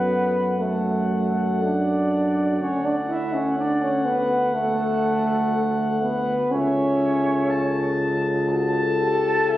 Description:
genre	classical, brass quintet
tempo	61 BPM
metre	4/4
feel	rubato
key	D major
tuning	A4 = 440 Hz
part	mellow trumpet	melody	0.0-9.6 s	E5 to A5	-28 LUFS	left 1 dB	none
part	mellow flugelhorn	second line	0.0-9.6 s	A4 to A5	-30 LUFS	right 1 dB	none
part	clear euphonium	accompaniment	0.0-9.6 s	A3 to A4	-23 LUFS	equal	none
part	mellow French horn	accompaniment	0.0-9.6 s	F#4 to A4	-31 LUFS	left 5 dB	none
part	warm bass trombone	bass	0.0-9.6 s	C#2 to F#2	-26 LUFS	right 1 dB	none
room	moderate scoring stage reverb, RT60 1.8 s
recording	recorded on a phone in the room, club reverb, compression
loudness	-20 LUFS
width	side -14 dB against mid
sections	0.0-9.6 A section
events	none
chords	0.0 D/F#; 2.6 D; 6.5 A/C#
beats	0.61 1.62 | 2.60 3.59 4.57 5.55 | 6.52 7.49 8.51 9.51

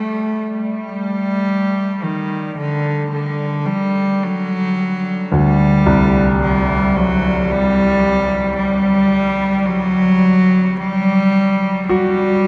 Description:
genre	dark ambient drone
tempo	55 BPM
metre	4/4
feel	straight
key	unclear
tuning	A4 = 439 Hz
part	rich cello	melody	0.0-12.5 s	D3 to A3	-18 LUFS	equal	diffuse ambient delay
part	warm baby grand piano	arpeggios	5.3-12.5 s	C2 to F#4	-21 LUFS	equal	diffuse ambient delay
room	wet huge ambient reverb, RT60 9.2 s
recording	dark, warm production, nothing above 10.5 kHz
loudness	-17 LUFS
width	mono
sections	0.0-12.5 A section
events	none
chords	0.0 G5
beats	| 0.94 2.04 3.13 4.23 | 5.32 6.42 7.50 8.59 | 9.68 10.79 11.90

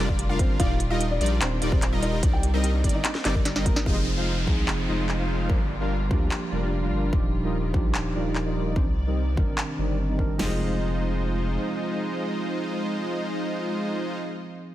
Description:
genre	future bass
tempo	147 BPM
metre	4/4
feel	half-time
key	F dorian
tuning	A4 = 439 Hz
part	rich symphonic string section	sustained chords	0.0-14.2 s	C3 to D5	-40 LUFS	left 1 dB	sidechain pumping
part	thumb-piano-like synth pluck	arpeggios	0.0-3.9 s	D4 to Bb4	-39 LUFS	right 1 dB	none
part	wide unison pluck	arpeggios	0.0-3.8 s	D5 to F5	-37 LUFS	equal	sidechain pumping, digital delay
part	soft supersaw	riff	0.0-14.2 s	G3 to F5	-29 LUFS	equal	sidechain pumping, low-pass filter, digital delay
part	saturated sub bass	bass	0.0-11.6 s	Eb1 to D2	-27 LUFS	equal	sidechain pumping
part	big-room dance drum kit	drums	0.1-10.5 s	crash cymbal, kick drum, snare drum	-24 LUFS	equal	none
part	trap drum kit	drums	0.2-9.7 s	handclaps, hi-hat, snare drum	-30 LUFS	equal	none
part	dark grand piano	melody	0.4-3.8 s	Bb3 to G5	-33 LUFS	left 1 dB	sidechain pumping, digital delay
part	bright tine electric piano	accompaniment	3.8-14.7 s	Eb3 to C5	-32 LUFS	right 3 dB	medium stereo tremolo, sidechain pumping, digital delay
part	downlifter and impact	sound effects	3.9-7.1, 10.4-14.2 s	none	-36 LUFS	equal	none
room	light reverb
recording	none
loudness	-23 LUFS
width	side -14 dB against mid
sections	0.0-3.9 A section; 3.9-10.4 B section; 10.4-13.7 C section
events	drop 0.0-3.9; drum fill 3.5-3.9; filter sweep on supersaw synth 3.9-10.4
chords	0.0 Gm7; 0.6 Ebmaj9; 2.2 Cm9; 3.9 Fm7; 5.5 Gm7; 7.1 Ebmaj9; 8.8 Cm9; 10.4 Fm7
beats	0.19 | 0.60 1.00 1.41 1.82 | 2.23 2.64 3.05 3.45 | 3.86 4.27 4.68 5.09 | 5.50 5.90 6.31 6.72 | 7.13 7.54 7.94 8.35 | 8.76 9.17 9.58 9.98 | 10.39 10.80 11.21 11.62 | 12.03 12.43 12.84 13.25

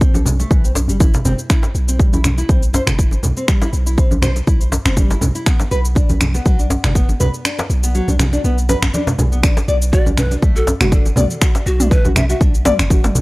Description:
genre	afro house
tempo	121 BPM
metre	4/4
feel	swing 54% on 16ths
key	B phrygian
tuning	A4 = 440 Hz
part	nylon-string guitar	arpeggios	0.0-13.0 s	E3 to D5	-23 LUFS	left 1 dB	sidechain pumping, low-pass filter, tape echo
part	warm 808-style bass	bass	0.0-13.2 s	F#1 to B1	-18 LUFS	equal	sidechain pumping
part	electronic kick drum	drums	0.0-13.0 s	none	-14 LUFS	equal	small room ambience
part	house drum kit	drums	0.0-13.2 s	finger snaps, shaker, toms	-22 LUFS	equal	small room ambience
part	congas	percussion	0.0-13.2 s	none	-21 LUFS	right 1 dB	none
part	djembe	percussion	0.3-13.2 s	none	-23 LUFS	left 1 dB	none
part	breathy mellow large pan pipes	melody	9.9-12.4 s	F#4 to E5	-24 LUFS	right 1 dB	tape echo
room	small room ambience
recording	dry, gritty hardware recording, transformer saturation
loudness	-13 LUFS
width	side -22 dB against mid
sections	0.0-13.2 A section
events	kick drops out 7.5-9.4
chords	0.0 Amadd9 (rootless); 1.5 C; 5.5 Bm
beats	0.01 0.51 1.00 | 1.50 2.00 2.49 2.99 | 3.48 3.98 4.48 4.97 | 5.47 5.96 6.46 6.96 | 7.45 7.95 8.44 8.94 | 9.43 9.93 10.43 10.92 | 11.42 11.91 12.41 12.91

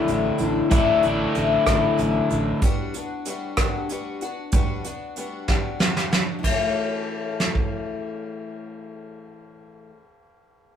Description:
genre	folk rock and heartland rock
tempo	63 BPM (dotted quarters)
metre	6/8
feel	straight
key	A mixolydian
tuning	A4 = 440 Hz
part	picked twelve-string acoustic guitar	accompaniment	0.0-10.0 s	A2 to A4	-25 LUFS	left 6 dB	none
part	crunchy overdriven guitar	riff	0.0-2.6 s	A2 to E4	-23 LUFS	right 1 dB	none
part	fingered electric bass	bass	0.1-2.5 s	A1	-29 LUFS	equal	none
part	soft brush drum kit	drums	0.1-7.7 s	hi-hat, kick drum, ride cymbal, rim click, snare drum	-23 LUFS	right 1 dB	none
room	moderate studio reverb, RT60 0.6 s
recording	rough rehearsal-room recording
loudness	-20 LUFS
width	side -8 dB against mid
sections	0.0-6.4 A section; 6.4-10.2 B section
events	drum fill 5.5-6.4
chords	0.0 Asus4; 2.6 Gmaj7; 6.4 A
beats	| 0.71 1.67 | 2.62 3.57 | 4.53 5.48 | 6.43 7.38 | 8.34 9.29

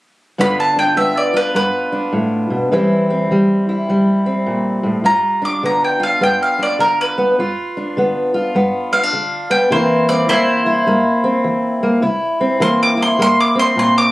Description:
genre	acoustic country blues, solo or duo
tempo	103 BPM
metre	4/4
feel	swing 64% on 8ths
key	G mixolydian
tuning	A4 = 442 Hz
part	mandolin	melody	0.4-14.1 s	E4 to D6	-16 LUFS	equal	none
part	fingerpicked steel-string acoustic guitar	accompaniment	0.4-14.1 s	G2 to F4	-15 LUFS	equal	none
room	light reverb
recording	recorded on a phone in the room, club reverb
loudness	-13 LUFS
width	side -18 dB against mid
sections	0.4-14.1 A section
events	mandolin solo 0.4-14.1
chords	0.4 G7; 2.7 C7; 5.1 G7; 9.7 C7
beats	| 0.39 0.97 1.56 2.14 | 2.72 3.31 3.89 4.47 | 5.05 5.63 6.22 6.80 | 7.38 7.96 8.54 9.13 | 9.71 10.29 10.87 11.45 | 12.03 12.61 13.19 13.77

